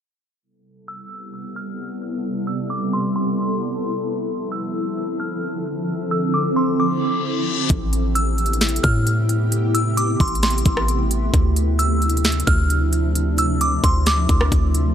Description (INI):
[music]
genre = hip hop, atmospheric cloud-rap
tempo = 132 BPM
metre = 4/4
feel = half-time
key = A minor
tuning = A4 = 440 Hz
[part]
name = shimmering ambient pad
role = sustained chords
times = 1.3-14.9 s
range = C3 to A4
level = -23 LUFS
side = equal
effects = chorus, built-in reverb, sidechain pumping
[part]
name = delicate synth tine bell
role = melody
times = 0.9-14.5 s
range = C6 to F6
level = -26 LUFS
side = equal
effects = chorus, digital delay
[part]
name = reverse cymbal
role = sound effects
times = 7.0-7.7 s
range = none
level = -27 LUFS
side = left 8 dB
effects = none
[part]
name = warm 808-style bass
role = bass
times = 7.7-14.9 s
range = A1 to A2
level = -19 LUFS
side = equal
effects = none
[part]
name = trap drum kit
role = drums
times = 7.7-14.9 s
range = hi-hat, kick drum, rim click, snare drum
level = -20 LUFS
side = equal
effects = overdrive
[sound]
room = little or no reverb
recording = low-pass filter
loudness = -18 LUFS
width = side -9 dB against mid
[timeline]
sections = 0.4-7.7 A section; 7.7-14.9 B section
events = filter sweep 0.4-7.7; reverse cymbal 7.0-7.7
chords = 0.4 Am9; 4.1 Dm9; 7.7 Am9; 11.3 Dm9